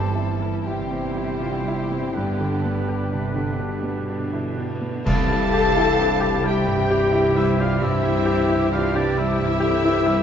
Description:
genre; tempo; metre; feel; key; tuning
classical, romantic movement for piano and orchestra; 40-45 BPM (dotted quarters); 12/8; rubato; C major; A4 = 440 Hz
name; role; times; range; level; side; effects
bright grand piano; melody; 0.0-10.2 s; C2 to G4; -24 LUFS; left 1 dB; none
rich symphonic violin section; melody; 0.0-10.2 s; C4 to A4; -36 LUFS; left 5 dB; none
clear oboe; second line; 0.0-10.2 s; B4 to A5; -29 LUFS; right 1 dB; none
mellow clarinet; second line; 0.0-10.2 s; D4 to A4; -34 LUFS; left 2 dB; none
mellow hollow silver concert flute; second line; 0.0-10.2 s; B4 to A5; -32 LUFS; left 2 dB; none
warm symphonic violin section; second line; 0.0-10.2 s; G4 to A5; -32 LUFS; left 3 dB; none
mellow bassoon; accompaniment; 0.0-4.7 s; G3; -35 LUFS; right 2 dB; none
warm studio viola section; accompaniment; 0.0-10.2 s; D3 to A4; -31 LUFS; equal; none
warm French horn section; sustained chords; 0.0-10.2 s; D3 to A4; -28 LUFS; left 5 dB; none
rich symphonic cello section; bass; 0.0-10.2 s; G2 to D3; -29 LUFS; right 5 dB; none
rich symphonic double bass section; bass; 0.0-10.2 s; G1 to C2; -29 LUFS; right 4 dB; none
timpani; percussion; 0.0-6.4 s; G2 to C3; -31 LUFS; right 1 dB; none
mellow trombone section; sustained chords; 5.1-10.2 s; E3 to G3; -31 LUFS; right 2 dB; none
dark trumpet section; stabs; 5.1-10.2 s; G4; -30 LUFS; right 2 dB; none
clash cymbals and concert bass drum; percussion; 5.1-6.9 s; none; -30 LUFS; equal; none
room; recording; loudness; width
wet concert hall reverb, RT60 1.8 s; dark, warm production, nothing above 7.8 kHz; -19 LUFS; side -8 dB against mid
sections
0.0-5.1 A section; 5.1-10.2 B section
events
band accent 5.1-6.0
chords
0.0 C/G; 2.2 G; 5.1 C

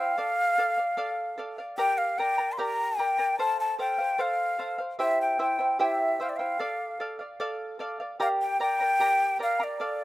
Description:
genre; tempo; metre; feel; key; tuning
andean folk, Andean ensemble; 75 BPM; 2/4; straight; unclear; A4 = 440 Hz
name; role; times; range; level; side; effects
breathy quena; melody; 0.0-10.0 s; D5 to C6; -26 LUFS; left 1 dB; none
charango; accompaniment; 0.0-10.0 s; E4 to Bb5; -30 LUFS; right 1 dB; none
room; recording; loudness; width
light reverb; rough home demo mix; -25 LUFS; side -16 dB against mid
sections
0.0-10.0 A section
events
none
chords
0.2 Dm; 1.8 Gm; 3.4 F; 5.0 C; 6.6 Dm; 8.2 Gm

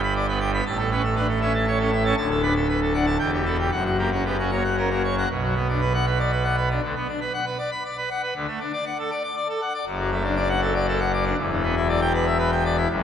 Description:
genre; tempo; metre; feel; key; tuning
classical, organ toccata; 118 BPM; 3/4; straight; B minor; A4 = 443 Hz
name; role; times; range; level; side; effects
pipe organ, full organ; solo; 0.0-13.0 s; D1 to D6; -21 LUFS; equal; none
room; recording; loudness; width
wet church reverb, RT60 2.8 s; none; -21 LUFS; side -8 dB against mid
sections
0.0-5.3 A section; 5.3-13.0 B section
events
none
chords
0.0 G; 0.6 A; 2.2 D; 3.2 Em; 3.7 F#; 5.3 Bm; 6.8 Bm/D; 8.4 D; 9.9 D/F#; 11.4 Em7

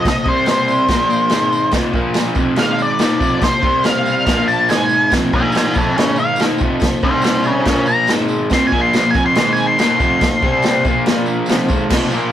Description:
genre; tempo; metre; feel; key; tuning
garage rock duo or trio; 142 BPM; 4/4; straight; unclear; A4 = 442 Hz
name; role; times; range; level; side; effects
octave-fuzz lead guitar; melody; 0.0-11.0 s; Ab4 to C6; -16 LUFS; equal; distortion
overdriven combo organ; sustained chords; 0.0-12.3 s; Bb3 to Bb5; -27 LUFS; equal; none
crunchy overdriven guitar; riff; 0.0-12.3 s; F2 to Eb4; -18 LUFS; equal; none
vintage drum kit; drums; 0.1-12.0 s; crash cymbal, kick drum, snare drum; -18 LUFS; equal; none
tambourine; percussion; 0.1-12.2 s; none; -35 LUFS; right 2 dB; none
room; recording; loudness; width
moderate small room reverb, RT60 0.5 s; rough rehearsal-room recording, warm saturation; -13 LUFS; side -11 dB against mid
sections
0.0-11.9 A section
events
lead electric guitar solo 0.0-11.9; transistor combo organ fill 0.9-1.7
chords
0.3 C5; 0.9 Bb5; 1.3 Ab5; 1.7 F5; 1.9 Bb5; 2.4 F5; 2.6 Ab5; 3.0 F; 3.6 C5; 4.3 Bb5; 4.7 Ab5; 5.1 F5; 5.3 Bb5; 5.8 F; 6.0 Ab5; 6.4 F; 7.0 C5; 7.7 Bb5; 8.1 Ab5; 8.5 F5; 8.7 Bb5; 9.1 F5; 9.4 Ab5; 9.8 F; 10.4 C5; 10.8 Bb5; 11.5 F; 11.9 F5

